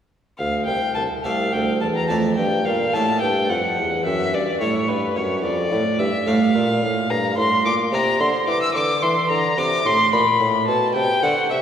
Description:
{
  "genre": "classical, baroque-style sonata movement with continuo",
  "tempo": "72 BPM (dotted quarters)",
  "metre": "12/8",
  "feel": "straight",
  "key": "D minor",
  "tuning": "A4 = 441 Hz",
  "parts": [
    { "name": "warm violin", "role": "melody", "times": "0.4-11.6 s", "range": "B4 to E6", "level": "-20 LUFS", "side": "left 2 dB", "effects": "none" },
    { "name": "harpsichord", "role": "accompaniment", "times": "0.4-11.6 s", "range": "C2 to D5", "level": "-24 LUFS", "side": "right 2 dB", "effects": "none" },
    { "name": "mellow bassoon", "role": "bass", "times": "0.4-11.6 s", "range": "C2 to E3", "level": "-23 LUFS", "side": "right 1 dB", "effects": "none" }
  ],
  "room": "wet concert hall reverb, RT60 2.5 s",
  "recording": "recorded in a church or concert hall",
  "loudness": "-18 LUFS",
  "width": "side -8 dB against mid",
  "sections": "0.4-11.6 A section",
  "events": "none",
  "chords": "0.4 Dm; 3.8 C#dim/E; 5.4 Dm/F; 7.1 Gm; 10.4 F#dim/A",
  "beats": "| 0.39 1.24 2.09 2.94 | 3.78 4.61 5.44 6.27 | 7.10 7.93 8.75 9.58 | 10.41 11.23"
}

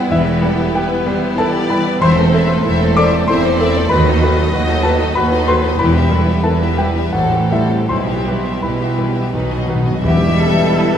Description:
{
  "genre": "classical, romantic movement for piano and orchestra",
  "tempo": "77-98 BPM",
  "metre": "3/4",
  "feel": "rubato",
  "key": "E minor",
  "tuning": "A4 = 443 Hz",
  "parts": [
    { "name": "clear grand piano", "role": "melody", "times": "0.0-11.0 s", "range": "A1 to D6", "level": "-16 LUFS", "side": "equal", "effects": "none" },
    { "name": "rich studio violin section", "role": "melody", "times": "0.0-11.0 s", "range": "G4 to D#5", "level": "-26 LUFS", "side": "left 5 dB", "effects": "none" },
    { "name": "rich studio violin section", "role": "second line", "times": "0.0-11.0 s", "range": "G3 to E5", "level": "-22 LUFS", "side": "left 3 dB", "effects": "none" },
    { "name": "rich studio viola section", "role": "accompaniment", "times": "0.0-11.0 s", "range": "D#3 to F#4", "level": "-22 LUFS", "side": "equal", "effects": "none" },
    { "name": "clear studio cello section", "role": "bass", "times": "0.1-11.0 s", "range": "D#2 to A4", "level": "-21 LUFS", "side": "right 2 dB", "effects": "none" },
    { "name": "rich studio double bass section", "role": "bass", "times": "0.1-11.0 s", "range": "E1 to D#2", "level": "-21 LUFS", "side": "right 2 dB", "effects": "none" },
    { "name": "timpani", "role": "percussion", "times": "2.0-11.0 s", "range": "E2 to B2", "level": "-23 LUFS", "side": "equal", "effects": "none" },
    { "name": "mellow hollow small flute group", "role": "second line", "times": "10.0-11.0 s", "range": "E5", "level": "-22 LUFS", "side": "left 4 dB", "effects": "none" },
    { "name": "bright trombone section", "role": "sustained chords", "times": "10.0-11.0 s", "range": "E3 to G3", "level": "-23 LUFS", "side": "right 1 dB", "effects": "none" },
    { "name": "mellow French horn section", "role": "sustained chords", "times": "10.0-11.0 s", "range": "B3 to G4", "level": "-23 LUFS", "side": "left 4 dB", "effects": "none" }
  ],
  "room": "wet scoring stage reverb, RT60 1.6 s",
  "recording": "heard from further back in the room",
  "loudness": "-13 LUFS",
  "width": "side -9 dB against mid",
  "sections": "0.0-10.0 A section",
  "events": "timpani fill 9.3-10.0",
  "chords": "0.1 Em; 2.0 Am/E; 3.9 B7/D#; 5.8 Em; 7.1 Am7; 7.9 Em/B; 9.3 B; 10.0 Em",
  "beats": "| 0.11 0.76 1.39 | 2.02 2.65 3.29 | 3.92 4.53 5.17 | 5.80 6.45 7.14 | 7.91 8.64 9.34 | 10.04 10.71"
}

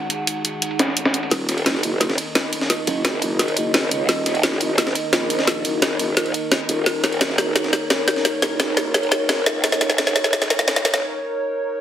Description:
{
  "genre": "dark technical drum and bass",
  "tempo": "173 BPM",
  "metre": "4/4",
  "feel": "straight",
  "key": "Eb minor",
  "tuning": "A4 = 439 Hz",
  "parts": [
    { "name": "dark analog pad", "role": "sustained chords", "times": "0.0-11.8 s", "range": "Eb4 to Gb5", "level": "-25 LUFS", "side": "right 1 dB", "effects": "chorus" },
    { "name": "breakbeat sampler-style drum kit", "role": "drums", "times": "0.1-11.0 s", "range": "ride cymbal, snare drum", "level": "-25 LUFS", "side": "equal", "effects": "high-pass filter on cymbals, low-pass filter on cymbals, high-pass filter on snare, low-pass filter on snare, high-pass filter on room, low-pass filter on room" },
    { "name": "drum and bass drum kit", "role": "drums", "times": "0.1-11.0 s", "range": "hi-hat, snare drum", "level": "-20 LUFS", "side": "equal", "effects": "none" },
    { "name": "growl bass", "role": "bass", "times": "1.3-11.0 s", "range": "Eb1 to Db2", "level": "-25 LUFS", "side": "equal", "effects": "chorus, high-pass filter" }
  ],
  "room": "light reverb",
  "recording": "heavily compressed radio sound, multiband compression, high-pass filter",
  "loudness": "-18 LUFS",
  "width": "side -10 dB against mid",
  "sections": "0.0-1.3 A section; 1.3-11.8 B section",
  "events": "build-up 1.3-11.8; drum fill 1.3-11.0; break 11.0-11.8",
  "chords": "0.0 Ebm",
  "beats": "0.27 0.62 0.97 | 1.31 1.66 2.01 2.35 | 2.70 3.05 3.40 3.74 | 4.09 4.43 4.78 5.13 | 5.48 5.82 6.17 6.52 | 6.86 7.21 7.56 7.90 | 8.25 8.60 8.94 9.29 | 9.64 9.98 10.33 10.68 | 11.03 11.37 11.72"
}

